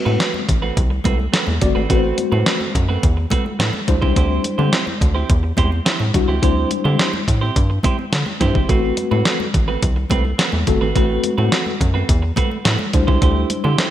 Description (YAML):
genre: early-eighties boogie funk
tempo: 106 BPM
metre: 4/4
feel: straight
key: A dorian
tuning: A4 = 437 Hz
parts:
  - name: mellow tine electric piano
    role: accompaniment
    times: 0.0-13.8 s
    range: G3 to D5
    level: -22 LUFS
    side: left 3 dB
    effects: medium stereo tremolo
  - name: clean electric guitar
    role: riff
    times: 0.1-13.9 s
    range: A3 to C5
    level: -24 LUFS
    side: right 6 dB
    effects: wide subtle chorus
  - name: rubbery square bass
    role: bass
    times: 0.1-13.8 s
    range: G1 to D3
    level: -19 LUFS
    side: equal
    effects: none
  - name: congas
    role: percussion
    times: 0.1-13.8 s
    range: none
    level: -28 LUFS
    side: left 2 dB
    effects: none
  - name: clean 12-bit digital drum machine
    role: drums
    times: 0.2-13.9 s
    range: hi-hat, kick drum, snare drum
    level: -18 LUFS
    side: equal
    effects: none
room: light reverb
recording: bright 1980s-style digital production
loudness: -15 LUFS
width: side -12 dB against mid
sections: 0.0-13.9 A section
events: none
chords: 0.0 Am69; 3.9 D9sus4; 8.7 Am69; 12.9 D9sus4